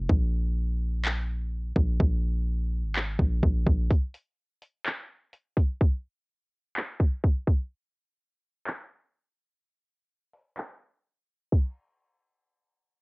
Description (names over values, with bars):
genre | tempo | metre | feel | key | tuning
hip hop, atmospheric cloud-rap | 126 BPM | 4/4 | half-time | unclear | A4 = 440 Hz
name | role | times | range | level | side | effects
warm 808-style bass | bass | 0.0-3.9 s | Ab1 to Bb1 | -26 LUFS | equal | none
trap drum kit | drums | 0.1-11.6 s | crash cymbal, handclaps, hi-hat, kick drum | -24 LUFS | equal | overdrive, cassette tape
room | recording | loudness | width
little or no reverb | home recording on cassette, low-pass filter | -25 LUFS | side -34 dB against mid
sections
0.0-11.5 A section; 11.5-13.0 B section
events
break 0.0-3.9; filter sweep 0.0-11.5; kick muted 10.6-11.5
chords
none